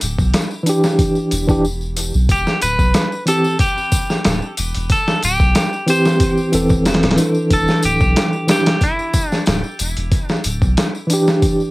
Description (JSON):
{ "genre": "trip hop", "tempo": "92 BPM", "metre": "4/4", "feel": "swing 53% on 16ths", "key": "E minor", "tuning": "A4 = 440 Hz", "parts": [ { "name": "soft dub sub bass", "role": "bass", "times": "0.0-10.8 s", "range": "D1 to B1", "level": "-19 LUFS", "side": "equal", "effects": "none" }, { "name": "dusty soul sampler-style drum kit", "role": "drums", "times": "0.0-11.6 s", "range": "hi-hat, kick drum, snare drum", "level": "-17 LUFS", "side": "equal", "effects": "overdrive, cassette tape" }, { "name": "tambourine", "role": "percussion", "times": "0.0-11.7 s", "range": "none", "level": "-28 LUFS", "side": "left 3 dB", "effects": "none" }, { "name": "tine electric piano", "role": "accompaniment", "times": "0.6-11.7 s", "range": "E3 to A4", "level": "-17 LUFS", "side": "equal", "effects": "tremolo, tape echo" }, { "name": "clean electric guitar", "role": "melody", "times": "2.3-9.4 s", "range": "E4 to C5", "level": "-21 LUFS", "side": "equal", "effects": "cassette tape, tape echo" } ], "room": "light reverb", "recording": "home recording on cassette", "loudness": "-14 LUFS", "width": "side -21 dB against mid", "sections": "0.0-11.7 A section", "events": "none", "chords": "0.0 Em7; 2.3 C; 7.5 Em7" }